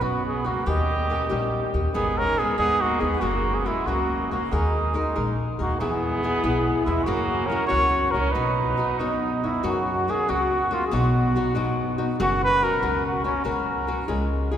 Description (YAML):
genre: mexican folk, mariachi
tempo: 94 BPM (dotted quarters)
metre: 6/8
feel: rubato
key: B major, F# major from 9.6 s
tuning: A4 = 440 Hz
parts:
  - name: mellow trumpet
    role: melody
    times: 0.0-14.5 s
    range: C#4 to D#5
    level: -24 LUFS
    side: right 1 dB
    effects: none
  - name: clear trumpet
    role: second line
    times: 0.0-9.4 s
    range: G#3 to G4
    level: -31 LUFS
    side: right 3 dB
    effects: none
  - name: flamenco guitar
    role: accompaniment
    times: 0.0-14.6 s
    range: F#2 to A#4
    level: -27 LUFS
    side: left 2 dB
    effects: none
  - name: upright bass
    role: bass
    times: 0.0-14.5 s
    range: F#1 to F#2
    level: -28 LUFS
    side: equal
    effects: none
room: wet cathedral reverb, RT60 5.3 s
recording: recorded in a church or concert hall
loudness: -21 LUFS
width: side -9 dB against mid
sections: 0.0-9.6 A section; 9.6-14.6 B section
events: none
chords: 0.0 Bsus2; 0.7 D#7; 1.9 G#m; 3.2 F#; 4.5 D#sus4; 5.8 E; 7.1 F#; 8.3 B; 9.6 F#; 10.9 B; 12.2 F#; 13.5 F#/C#